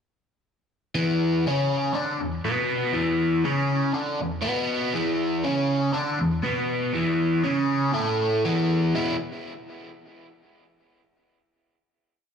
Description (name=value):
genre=rock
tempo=120 BPM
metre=4/4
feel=straight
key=unclear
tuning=A4 = 439 Hz
part: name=overdriven electric guitar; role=solo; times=0.9-9.1 s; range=E2 to E4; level=-22 LUFS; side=equal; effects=phaser, tape echo
room=digital ambience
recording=live gig heard through the venue's PA, club ambience, nothing above 10.3 kHz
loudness=-22 LUFS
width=side -7 dB against mid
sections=0.9-8.9 riff; 8.9-10.9 final chord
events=none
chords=0.9 E5; 8.9 E